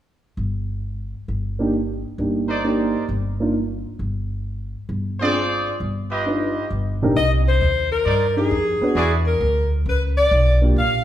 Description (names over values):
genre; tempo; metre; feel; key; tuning
jazz, big band swing; 133 BPM; 4/4; swing 68% on 8ths; C minor; A4 = 440 Hz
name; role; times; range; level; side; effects
upright bass; bass; 0.4-11.0 s; G1 to G2; -22 LUFS; equal; none
dark grand piano; accompaniment; 1.6-10.8 s; C3 to B4; -22 LUFS; right 1 dB; none
clear trumpet section; stabs; 2.5-9.2 s; Eb4 to Eb5; -24 LUFS; right 1 dB; none
clear saxophone section; melody; 7.2-11.0 s; Ab4 to F5; -20 LUFS; left 2 dB; none
room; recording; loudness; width
wet large studio reverb, RT60 1.3 s; heard from further back in the room; -18 LUFS; side -12 dB against mid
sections
0.0-7.2 A section; 7.2-11.0 B section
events
none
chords
0.0 G5; 1.7 Cm9/G; 5.4 Dm7b5; 6.3 G7b13; 7.2 Cm9; 9.0 E7(no3)